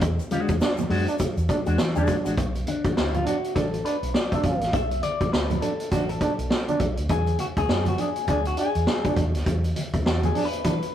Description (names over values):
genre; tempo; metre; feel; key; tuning
funk; 102 BPM; 4/4; swing 60% on 16ths; B dorian; A4 = 441 Hz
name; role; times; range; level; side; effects
vintage muted fingered electric bass; bass; 0.0-10.8 s; A1 to E3; -27 LUFS; equal; none
vintage drum kit; drums; 0.0-10.9 s; hi-hat, kick drum, snare drum; -26 LUFS; equal; none
tube shaker; percussion; 0.0-2.4 s; none; -47 LUFS; left 4 dB; none
electric guitar with an envelope filter; accompaniment; 0.3-10.9 s; G#3 to E#5; -28 LUFS; left 3 dB; none
congas; percussion; 0.3-10.8 s; none; -33 LUFS; right 2 dB; none
growling trombone; second line; 0.6-10.8 s; D4; -29 LUFS; right 3 dB; none
room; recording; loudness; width
moderate stone room reverb, RT60 1.0 s; rough rehearsal-room recording, warm saturation; -22 LUFS; side -10 dB against mid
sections
0.0-2.4 A section; 2.4-10.9 B section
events
clean electric guitar solo 2.4-10.9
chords
0.0 E9; 2.4 Bm7; 7.1 E9